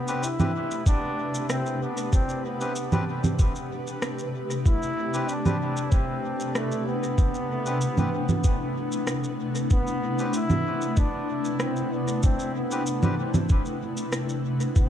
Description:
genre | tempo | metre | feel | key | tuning
ambient dub | 95 BPM | 4/4 | straight | A minor | A4 = 440 Hz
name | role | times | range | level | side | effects
warm trombone | melody | 0.0-14.9 s | A3 to E4 | -31 LUFS | equal | dub echo
granular cloud pad | sustained chords | 0.0-14.9 s | C3 to B4 | -29 LUFS | left 1 dB | built-in reverb
melodica | stabs | 0.1-13.2 s | C4 to B4 | -36 LUFS | left 1 dB | dub echo
electronic shaker, congas and rim click | drums | 0.1-14.9 s | none | -28 LUFS | right 2 dB | overdrive, studio reverb, dub echo
electronic kick drum | drums | 0.9-14.9 s | none | -21 LUFS | equal | studio reverb
room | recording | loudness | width
light reverb | dark, warm production, lossy compression artefacts | -23 LUFS | side -10 dB against mid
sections
0.0-14.9 A section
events
none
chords
0.0 Am11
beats
0.23 0.86 1.50 | 2.13 2.76 3.39 4.02 | 4.65 5.29 5.92 6.55 | 7.18 7.81 8.44 9.07 | 9.71 10.34 10.97 11.60 | 12.23 12.86 13.49 14.13 | 14.76

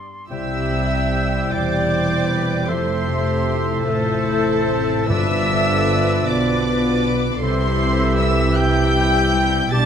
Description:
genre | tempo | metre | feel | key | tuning
classical, slow romantic movement for symphony orchestra | 51 BPM (dotted quarters) | 6/8 | uneven beats, rubato | C major | A4 = 440 Hz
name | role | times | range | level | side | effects
silver concert flute | second line | 0.0-9.9 s | A4 to C6 | -27 LUFS | equal | none
concert harp | arpeggios | 0.0-9.9 s | F2 to A4 | -26 LUFS | left 8 dB | none
dark studio violin section | melody | 0.3-9.9 s | A5 to A6 | -26 LUFS | left 2 dB | none
bright oboe | second line | 0.3-9.9 s | D5 to G5 | -29 LUFS | right 2 dB | none
clear clarinet | second line | 0.3-9.9 s | G4 to C5 | -31 LUFS | equal | none
warm studio violin section | second line | 0.3-9.9 s | A4 to A5 | -29 LUFS | left 1 dB | none
rich studio viola section | accompaniment | 0.3-9.9 s | C4 to C5 | -27 LUFS | right 2 dB | none
warm bassoon | accompaniment | 0.3-9.9 s | E3 to A3 | -30 LUFS | right 4 dB | none
mellow French horn section | sustained chords | 0.3-9.9 s | G3 to F4 | -25 LUFS | left 4 dB | none
dark studio double bass section | bass | 0.3-9.9 s | E1 to C2 | -25 LUFS | right 3 dB | none
warm studio cello section | bass | 0.3-9.9 s | E2 to C3 | -25 LUFS | right 2 dB | none
timpani | percussion | 5.1-6.2 s | G2 | -27 LUFS | equal | none
room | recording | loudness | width
moderate scoring stage reverb, RT60 1.9 s | none | -16 LUFS | side -8 dB against mid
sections
0.3-9.9 A section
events
none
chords
0.3 C; 2.7 Fmaj7; 5.1 G7; 7.4 C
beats
| 0.31 1.53 | 2.69 3.85 | 5.10 6.29 | 7.43 8.57 | 9.72

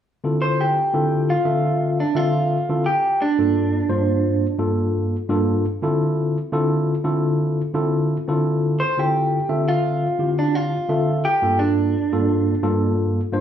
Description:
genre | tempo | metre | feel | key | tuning
blues | 86 BPM | 4/4 | swing 54% on 16ths | D minor | A4 = 441 Hz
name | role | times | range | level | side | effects
tine electric piano | accompaniment | 0.2-13.4 s | G2 to E5 | -20 LUFS | equal | overdrive, medium stereo tremolo, plate reverb, slapback echo
electric guitar through a small old amp | melody | 0.4-4.6, 8.8-12.9 s | D4 to C5 | -21 LUFS | right 1 dB | plate reverb, slapback echo
room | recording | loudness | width
moderate club reverb, RT60 0.5 s | live gig heard through the venue's PA, club reverb | -18 LUFS | side -9 dB against mid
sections
0.1-13.4 A section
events
none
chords
0.1 Dm9; 2.8 Gm9; 5.6 Dm9; 11.2 Gm9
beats
| 0.05 0.75 1.45 2.15 | 2.85 3.55 4.25 4.95 | 5.64 6.34 7.04 7.74 | 8.44 9.14 9.84 10.54 | 11.24 11.94 12.64 13.34

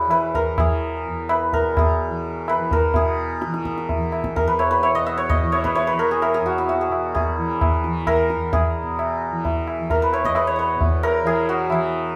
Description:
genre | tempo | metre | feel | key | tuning
indian classical, Hindustani | 129 BPM | 3/4 | straight | E raga yaman | A4 = 440 Hz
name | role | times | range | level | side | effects
santur | melody | 0.0-12.2 s | E4 to E5 | -23 LUFS | equal | none
tanpura | drone | 0.0-12.2 s | E2 to E3 | -31 LUFS | equal | none
tabla | percussion | 0.1-11.9 s | none | -26 LUFS | equal | none
room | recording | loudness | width
moderate small room reverb, RT60 0.5 s | none | -21 LUFS | mono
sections
0.0-3.0 A section; 3.0-12.2 B section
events
speeding up 0.0-12.2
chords
none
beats
| 0.10 0.58 1.06 | 1.54 2.01 2.48 | 2.96 3.43 3.90 | 4.37 4.84 5.30 | 5.77 6.23 6.70 | 7.16 7.62 8.08 | 8.54 8.99 9.45 | 9.90 10.36 10.81 | 11.26 11.71

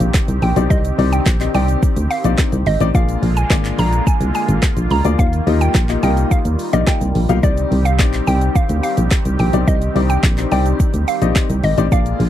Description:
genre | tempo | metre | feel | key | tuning
dance-pop | 107 BPM | 4/4 | straight | C minor | A4 = 439 Hz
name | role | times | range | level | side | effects
filtered supersaw swell | sustained chords | 0.0-12.3 s | D3 to D5 | -25 LUFS | right 1 dB | sidechain pumping
solid FM bass | bass | 0.0-12.3 s | Ab1 to Eb2 | -16 LUFS | equal | sidechain pumping
deep house drum kit | drums | 0.0-12.3 s | handclaps, hi-hat, kick drum, shaker, snare drum | -17 LUFS | equal | none
egg shaker | percussion | 0.0-12.2 s | none | -38 LUFS | right 24 dB | none
impact | sound effects | 0.0-0.7 s | none | barely audible | none | none
mallet-like synth pluck | melody | 0.4-12.2 s | D5 to Bb5 | -23 LUFS | right 2 dB | chorus, sidechain pumping, slapback echo
clear grand piano | accompaniment | 0.6-12.2 s | Bb3 to F5 | -22 LUFS | left 14 dB | sidechain pumping
room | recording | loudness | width
little or no reverb | dry, close 1970s-style studio recording | -13 LUFS | side -12 dB against mid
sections
0.0-12.3 A section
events
impact 0.0-0.7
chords
0.0 Cmadd9; 2.9 Bb7; 5.2 Ebadd9; 7.4 Cmadd9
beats
0.14 | 0.70 1.26 1.83 2.39 | 2.95 3.51 4.07 4.63 | 5.19 5.75 6.31 6.87 | 7.43 7.99 8.55 9.12 | 9.68 10.24 10.80 11.36 | 11.92

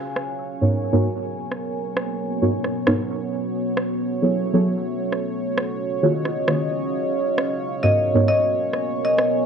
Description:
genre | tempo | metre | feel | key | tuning
UK garage, two-step garage | 133 BPM | 4/4 | swing 61% on 16ths | G# dorian | A4 = 437 Hz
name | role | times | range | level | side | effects
warm analog pad | sustained chords | 0.0-9.5 s | C#5 | -29 LUFS | right 3 dB | chorus
deep dark ambient pad | texture | 0.0-9.5 s | B3 to G#5 | -26 LUFS | equal | chorus, built-in reverb
electronic rim click | drums | 0.2-9.3 s | none | -25 LUFS | right 1 dB | overdrive, low-pass filter on hats, low-pass filter on snare, low-pass filter on perc
deep mellow chord stab | stabs | 0.6-8.3 s | G#2 to C#5 | -20 LUFS | right 1 dB | chorus, tape echo
marimba with medium hard mallets | melody | 7.8-9.2 s | D#5 | -22 LUFS | left 2 dB | analog delay
room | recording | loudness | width
moderate plate reverb, RT60 1.3 s, digital ambience | echo-heavy mix | -20 LUFS | side -7 dB against mid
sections
0.0-9.5 A section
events
filter sweep on synth stab 0.0-9.5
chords
0.0 G#m11; 3.2 F#m11; 5.2 D#m11; 7.0 G#m11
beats
0.25 0.70 1.15 | 1.60 2.06 2.51 2.96 | 3.41 3.86 4.31 4.76 | 5.21 5.66 6.12 6.57 | 7.02 7.47 7.92 8.37 | 8.82 9.27

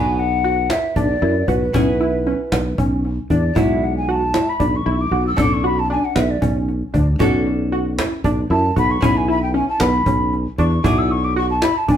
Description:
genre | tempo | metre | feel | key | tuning
progressive instrumental, band music in an uneven meter | 231 BPM (eighths) | 7/8 | straight | B dorian | A4 = 438 Hz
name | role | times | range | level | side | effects
mellow hollow jazz flute | melody | 0.0-12.0 s | B4 to E6 | -21 LUFS | left 1 dB | none
archtop guitar, miked and amplified | accompaniment | 0.0-12.0 s | G#3 to B4 | -27 LUFS | left 1 dB | none
tight sequenced synth | arpeggios | 0.0-12.0 s | B3 to F#4 | -22 LUFS | equal | chorus, ping-pong delay
sustaining fretless electric bass | bass | 0.0-12.0 s | B1 to F#2 | -19 LUFS | equal | none
cajon | drums | 0.2-12.0 s | none | -24 LUFS | equal | none
room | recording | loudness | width
wet studio reverb, RT60 0.8 s | band playing live in one room | -16 LUFS | side -9 dB against mid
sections
0.0-12.0 A section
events
flute solo 0.0-12.0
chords
0.0 Bm; 1.7 C#m7/B; 3.6 E7/B; 5.4 Bm7; 9.0 C#m7/B; 10.8 E7/B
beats
0.18 0.44 0.70 0.96 1.22 1.48 | 1.74 2.00 2.27 2.52 2.79 3.04 3.31 | 3.57 3.83 4.09 4.35 4.61 4.87 5.13 | 5.39 5.65 5.91 6.17 6.43 6.69 6.95 | 7.21 7.46 7.72 7.99 8.24 8.51 8.77 | 9.03 9.29 9.54 9.80 10.06 10.32 10.59 | 10.85 11.11 11.37 11.62 11.88

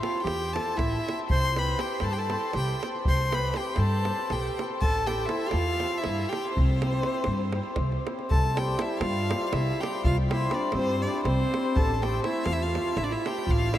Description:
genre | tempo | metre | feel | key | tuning
balkan folk, Balkan wedding band | 241 BPM (eighths) | 7/8 | straight | C major | A4 = 440 Hz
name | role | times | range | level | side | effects
bright violin | melody | 0.0-13.8 s | C5 to C6 | -31 LUFS | left 2 dB | none
warm clarinet | second line | 0.0-13.8 s | C4 to C5 | -32 LUFS | right 3 dB | none
cimbalom | accompaniment | 0.0-13.8 s | G3 to C5 | -34 LUFS | left 3 dB | none
davul | percussion | 0.0-13.8 s | none | -31 LUFS | right 1 dB | none
upright bass | bass | 0.2-13.8 s | A1 to G2 | -28 LUFS | equal | none
room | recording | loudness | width
moderate huge ambient reverb, RT60 7.6 s | in a vast, echoing space | -24 LUFS | side -12 dB against mid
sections
0.0-8.3 A section; 8.3-13.8 A section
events
speeding up 0.0-13.8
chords
0.0 Am; 1.3 C; 4.8 Am; 6.6 C; 11.8 Am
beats
0.04 0.30 0.55 0.80 1.05 | 1.30 1.56 1.81 2.06 2.31 2.56 2.81 | 3.07 3.32 3.57 3.82 4.07 4.32 4.57 | 4.82 5.07 5.32 5.57 5.82 6.07 6.32 | 6.57 6.81 7.06 7.31 7.56 7.81 8.05 | 8.30 8.55 8.80 9.04 9.29 9.54 9.79 | 10.03 10.28 10.52 10.77 11.02 11.26 11.51 | 11.75 12.00 12.24 12.49 12.73 12.98 13.22 | 13.47 13.71

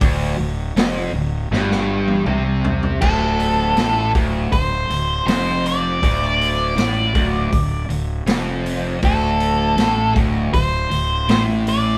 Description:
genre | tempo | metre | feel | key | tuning
blues rock power trio and southern rock | 80 BPM | 4/4 | straight | unclear | A4 = 440 Hz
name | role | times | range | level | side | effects
distorted electric guitar | riff | 0.0-12.0 s | D2 to C3 | -24 LUFS | equal | distortion
fuzz fingered electric bass | bass | 0.0-12.0 s | D1 to C2 | -25 LUFS | equal | overdrive
vintage drum kit | drums | 0.0-11.8 s | crash cymbal, hi-hat, kick drum, snare drum, toms | -24 LUFS | equal | none
octave-fuzz lead guitar | melody | 3.0-12.0 s | A4 to D5 | -23 LUFS | equal | distortion
room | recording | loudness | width
moderate studio reverb, RT60 0.8 s | band playing live in one room | -19 LUFS | mono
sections
0.0-3.0 A section; 3.0-12.0 B section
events
drum fill 1.5-3.0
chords
0.0 Dmadd11; 3.0 D5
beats
| 0.02 0.77 1.52 2.27 | 3.02 3.77 4.52 5.28 | 6.03 6.78 7.53 8.29 | 9.04 9.79 10.54 11.29

